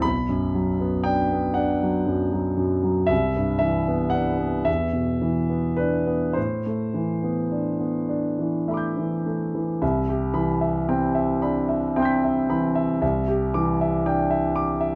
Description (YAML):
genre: classical, impressionist solo piano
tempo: 34-40 BPM (dotted quarters)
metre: 6/8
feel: rubato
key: unclear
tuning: A4 = 441 Hz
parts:
  - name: clear concert grand piano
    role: solo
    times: 0.0-15.0 s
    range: B1 to B6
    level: -24 LUFS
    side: equal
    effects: none
room: light reverb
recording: dark, warm production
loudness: -24 LUFS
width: mono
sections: 0.0-9.8 A section; 9.8-15.0 B section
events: none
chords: 0.0 Bm; 3.1 Cmaj9; 4.7 E5; 6.4 Am11; 9.8 Cmaj7